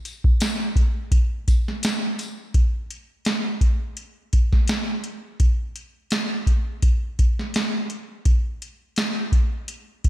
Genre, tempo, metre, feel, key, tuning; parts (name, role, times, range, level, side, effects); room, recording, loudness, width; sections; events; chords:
indie pop; 84 BPM; 4/4; swing 55% on 16ths
soft vintage rhythm box; drums; 0.1-10.1 s; hi-hat, kick drum, snare drum; -20 LUFS; equal; overdrive
tambourine; percussion; 0.1-2.4 s; -37 LUFS; left 4 dB
little or no reverb; -20 LUFS; side -14 dB against mid
0.0-2.5 A section; 2.5-10.1 B section